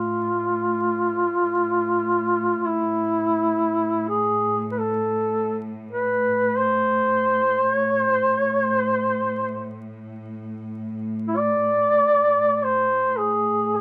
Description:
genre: caucasian folk, Caucasian lament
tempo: free time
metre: none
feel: none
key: A harmonic minor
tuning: A4 = 440 Hz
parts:
  - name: warm duduk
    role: melody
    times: 0.0-13.8 s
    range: E4 to D5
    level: -22 LUFS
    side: equal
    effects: slapback echo
  - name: clear studio cello section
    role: drone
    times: 0.0-13.8 s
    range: A2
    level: -32 LUFS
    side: equal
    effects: none
room: little or no reverb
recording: recorded outdoors, with no room sound, vinyl crackle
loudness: -22 LUFS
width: mono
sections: 0.0-13.8 A section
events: none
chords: none

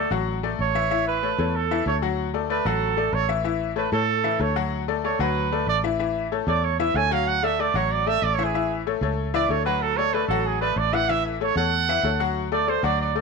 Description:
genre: latin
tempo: 189 BPM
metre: 4/4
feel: straight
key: A major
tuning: A4 = 442 Hz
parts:
  - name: warm trumpet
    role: melody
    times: 0.0-13.1 s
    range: G#4 to G#5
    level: -24 LUFS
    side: right 11 dB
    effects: none
  - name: bright upright piano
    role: accompaniment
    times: 0.0-13.2 s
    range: E3 to F#5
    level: -25 LUFS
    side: left 11 dB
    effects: none
  - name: fingered electric bass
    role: bass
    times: 0.0-13.2 s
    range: A1 to A2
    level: -28 LUFS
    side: right 1 dB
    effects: none
room: moderate echo chamber reverb, RT60 1.4 s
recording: 1960s-style stereo with parts hard left and right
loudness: -21 LUFS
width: side -4 dB against mid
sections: 0.0-13.2 A section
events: trumpet solo 0.0-13.2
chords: 0.0 D; 0.9 A; 2.2 D; 3.4 A; 4.7 D; 6.0 A; 7.3 D; 8.5 A; 9.8 D; 11.1 A; 12.4 D

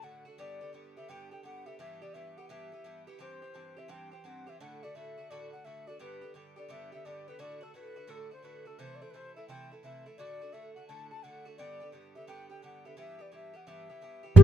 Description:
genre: celtic folk, Celtic hornpipe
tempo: 172 BPM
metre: 4/4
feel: swing 65% on 8ths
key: E minor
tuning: A4 = 441 Hz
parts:
  - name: bright baroque flute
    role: melody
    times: 0.0-14.4 s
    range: A4 to A5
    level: -48 LUFS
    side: left 2 dB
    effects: none
  - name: Irish bouzouki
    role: accompaniment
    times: 0.0-14.4 s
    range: G2 to G4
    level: -51 LUFS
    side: right 3 dB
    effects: none
  - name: mellow hollow tenor recorder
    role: second line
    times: 14.4 s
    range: G4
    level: -15 LUFS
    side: left 13 dB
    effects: none
  - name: upright bass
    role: bass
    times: 14.4 s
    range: G1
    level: -13 LUFS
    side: left 1 dB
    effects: none
  - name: bodhran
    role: percussion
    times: 14.4 s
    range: none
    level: -11 LUFS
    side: right 5 dB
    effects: none
room: little or no reverb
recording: none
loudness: -38 LUFS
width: side -9 dB against mid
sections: 0.0-3.2 A section; 3.2-14.4 A section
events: none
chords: 0.4 G; 1.8 Em; 3.2 C; 4.6 D; 6.0 G; 7.4 D; 8.8 Am; 10.2 D; 11.6 G; 13.0 Em

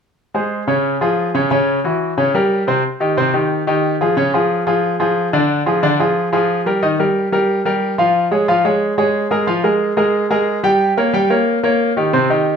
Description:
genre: latin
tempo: 181 BPM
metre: 4/4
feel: straight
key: Ab major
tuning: A4 = 439 Hz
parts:
  - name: bright concert grand piano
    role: solo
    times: 0.3-12.6 s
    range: C3 to G5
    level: -14 LUFS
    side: equal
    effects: none
room: moderate large studio reverb, RT60 0.8 s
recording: minimal, uncompressed stereo recording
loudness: -14 LUFS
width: side -6 dB against mid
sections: 0.2-2.8 A section; 2.8-12.6 B section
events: none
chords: 0.2 Ab; 0.8 Db; 1.5 Gb5; 2.2 Bbm69; 2.8 Abmaj7 (rootless); 4.2 Db; 5.5 Bb7 (rootless); 6.8 Eb; 8.2 Db; 9.5 Bb5; 10.8 Eb7

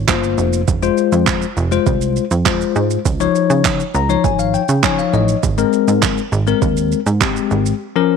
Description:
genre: dance-pop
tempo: 101 BPM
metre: 4/4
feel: straight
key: Ab major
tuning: A4 = 440 Hz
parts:
  - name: plucky analog bass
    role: bass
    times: 0.0-7.7 s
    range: F1 to Db3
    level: -18 LUFS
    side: right 2 dB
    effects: sidechain pumping
  - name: bell-like tine electric piano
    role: accompaniment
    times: 0.1-8.2 s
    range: F3 to Bb5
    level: -17 LUFS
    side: left 11 dB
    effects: sidechain pumping
  - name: deep house drum kit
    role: drums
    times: 0.1-7.8 s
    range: handclaps, kick drum, shaker, snare drum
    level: -19 LUFS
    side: right 6 dB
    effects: overdrive
room: light reverb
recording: 1960s-style stereo with parts hard left and right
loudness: -14 LUFS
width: side -6 dB against mid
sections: 0.0-8.2 A section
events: tine electric piano fill 3.6-5.4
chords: 0.0 Bb5; 0.7 Fm; 3.1 Dbadd9; 5.4 Abadd9

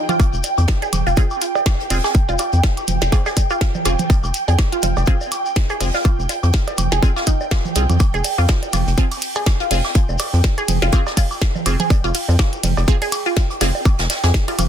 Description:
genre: minimal techno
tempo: 123 BPM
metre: 4/4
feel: swing 57% on 16ths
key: F minor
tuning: A4 = 440 Hz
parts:
  - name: resonant blip pluck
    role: riff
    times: 0.0-14.6 s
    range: Eb4 to Ab4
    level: -25 LUFS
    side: right 1 dB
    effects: phaser, wide subtle chorus, sidechain pumping, ping-pong delay
  - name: ethereal airy pad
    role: texture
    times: 0.0-14.7 s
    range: G5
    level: -26 LUFS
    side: right 2 dB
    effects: ensemble chorus, built-in reverb, sidechain pumping
  - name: minimal click drum kit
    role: drums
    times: 0.1-14.7 s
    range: hi-hat, ride cymbal, snare drum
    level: -26 LUFS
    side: right 1 dB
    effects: soft clipping on snare
  - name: congas, woodblock and cowbell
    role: percussion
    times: 0.1-14.7 s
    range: none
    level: -26 LUFS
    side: right 4 dB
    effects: overdrive, dub echo
  - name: shekere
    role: percussion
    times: 0.1-14.7 s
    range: none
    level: -32 LUFS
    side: left 6 dB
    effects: none
  - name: electronic kick drum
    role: drums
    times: 0.2-14.5 s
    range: none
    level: -16 LUFS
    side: equal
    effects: none
  - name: jazz brush drum kit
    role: drums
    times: 0.2-14.7 s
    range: hi-hat, snare drum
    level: -30 LUFS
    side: right 2 dB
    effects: high-pass filter on hats, soft clipping on snare, high-pass filter on snare, high-pass filter on room
  - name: rubbery square bass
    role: bass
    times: 0.3-14.7 s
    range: F1 to F2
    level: -17 LUFS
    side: equal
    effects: sidechain pumping
  - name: filtered dub chord stab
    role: stabs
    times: 1.2-13.7 s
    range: C4 to Ab4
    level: -27 LUFS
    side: right 2 dB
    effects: phaser, dub echo
room: little or no reverb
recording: dense, heavily limited modern master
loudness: -15 LUFS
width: side -9 dB against mid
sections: 0.0-14.7 A section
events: none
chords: 0.0 Fm

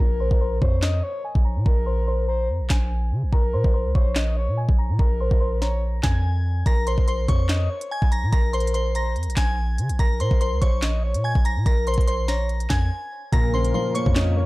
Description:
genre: hip hop, drill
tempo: 144 BPM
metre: 4/4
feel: half-time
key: Bb minor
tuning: A4 = 441 Hz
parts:
  - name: glassy synth bell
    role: melody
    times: 0.0-14.5 s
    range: C5 to Bb6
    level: -29 LUFS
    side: equal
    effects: chorus, low-pass filter
  - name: breathy flute-like synth lead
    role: second line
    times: 0.0-14.5 s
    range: Bb4 to Eb5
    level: -30 LUFS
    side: left 2 dB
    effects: chorus, digital delay
  - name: hard-hitting 808-style bass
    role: bass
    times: 0.0-14.5 s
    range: Bb1 to Db3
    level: -22 LUFS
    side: equal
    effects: none
  - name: drill drum kit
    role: drums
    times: 0.3-14.3 s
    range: handclaps, hi-hat, kick drum, snare drum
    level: -22 LUFS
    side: equal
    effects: none
  - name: dark baby grand piano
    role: accompaniment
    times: 13.3-14.5 s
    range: Bb2 to Db4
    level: -26 LUFS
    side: left 1 dB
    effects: low-pass filter
  - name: warm analog pad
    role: sustained chords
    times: 13.3-14.5 s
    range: Db3 to Bb4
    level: -36 LUFS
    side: left 2 dB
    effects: chorus
room: digital ambience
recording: dark, warm production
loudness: -19 LUFS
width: side -20 dB against mid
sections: 0.0-13.3 A section; 13.3-14.5 B section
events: break 0.0-6.7, 12.9-13.3; filter sweep 0.0-6.7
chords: 0.0 Bbm

